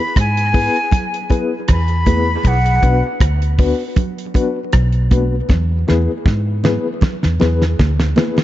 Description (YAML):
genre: dub reggae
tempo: 79 BPM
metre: 4/4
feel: straight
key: unclear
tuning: A4 = 441 Hz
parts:
  - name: silver concert flute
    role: melody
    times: 0.0-3.0 s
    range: F#5 to B5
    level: -20 LUFS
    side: left 1 dB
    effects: dub echo
  - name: vintage muted fingered electric bass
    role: bass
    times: 0.2-8.1 s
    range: B1 to G#2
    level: -16 LUFS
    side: equal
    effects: none
  - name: damped 70s drum kit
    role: drums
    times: 0.2-8.4 s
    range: hi-hat, kick drum, rim click, snare drum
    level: -16 LUFS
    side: equal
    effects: none
  - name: mellow reed electric piano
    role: stabs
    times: 0.5-8.4 s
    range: B3 to B4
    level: -21 LUFS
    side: left 4 dB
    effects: fast tremolo, dub echo
  - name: congas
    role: percussion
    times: 0.9-8.4 s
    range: none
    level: -26 LUFS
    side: right 6 dB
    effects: dub echo
room: light reverb, small room ambience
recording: echo-heavy mix, nothing above 7.7 kHz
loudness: -13 LUFS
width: side -14 dB against mid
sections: 0.0-8.4 A section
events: drum fill 5.5-8.4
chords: 0.0 E; 2.5 Bm; 5.5 E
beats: 0.17 0.93 1.69 | 2.45 3.21 3.97 4.74 | 5.50 6.26 7.02 7.78